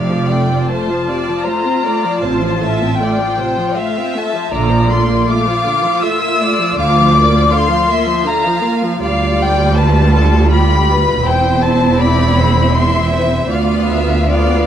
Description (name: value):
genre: classical, slow romantic movement for string orchestra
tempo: 79 BPM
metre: 3/4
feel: rubato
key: C major from 9.0 s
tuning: A4 = 438 Hz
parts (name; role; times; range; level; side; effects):
- rich chamber violin section; melody; 0.0-14.7 s; C5 to E6; -17 LUFS; left 3 dB; none
- clear chamber violin section; second line; 0.0-14.7 s; G4 to F5; -20 LUFS; left 1 dB; none
- clear symphonic viola section; accompaniment; 0.0-14.7 s; C3 to F4; -18 LUFS; equal; none
- rich studio cello section; bass; 0.0-14.7 s; D2 to Bb2; -18 LUFS; right 2 dB; none
- rich symphonic double bass section; bass; 0.0-14.7 s; E1 to D2; -17 LUFS; right 2 dB; none
room: moderate scoring stage reverb, RT60 1.7 s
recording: none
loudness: -12 LUFS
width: side -9 dB against mid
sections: 0.0-14.7 A section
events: none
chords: 0.0 F; 2.2 F/A; 4.5 Bbmaj7; 6.8 Bb/D; 9.0 G7/D; 11.2 C/E; 13.5 Bdim/D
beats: 0.68 1.45 | 2.22 3.00 3.77 | 4.53 5.28 6.04 | 6.78 7.52 8.26 | 9.01 9.75 10.50 | 11.23 11.98 12.74 | 13.51 14.29